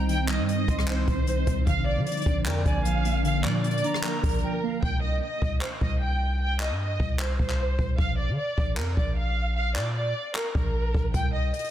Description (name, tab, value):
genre	hip hop, trap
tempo	152 BPM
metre	4/4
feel	half-time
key	C minor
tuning	A4 = 440 Hz
part	dark studio violin section	melody	0.0-11.7 s	Bb4 to G5	-31 LUFS	right 1 dB	low-pass filter, digital delay
part	silver concert flute	second line	0.0-4.8 s	F5 to C6	-38 LUFS	right 2 dB	digital delay
part	muted felt-like synth keys	accompaniment	0.0-4.9 s	D3 to Eb5	-30 LUFS	equal	chorus, phaser, low-pass filter
part	granular cloud pad	sustained chords	0.0-4.8 s	F3 to C5	-35 LUFS	right 1 dB	built-in reverb
part	hard-hitting 808-style bass	bass	0.0-11.5 s	Bb1 to D3	-27 LUFS	equal	none
part	jazz brush drum kit	drums	0.1-11.7 s	handclaps, hi-hat, kick drum, rim click	-28 LUFS	equal	soft clipping on snare
room	small room reverb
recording	dense, heavily limited modern master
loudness	-24 LUFS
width	side -11 dB against mid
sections	0.0-4.8 A section; 4.8-11.7 B section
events	drums muted 4.4-4.8; hi-hats muted 4.8-11.1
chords	0.0 Cm; 1.7 Bb; 4.8 Cm; 8.0 Bb; 11.1 Cm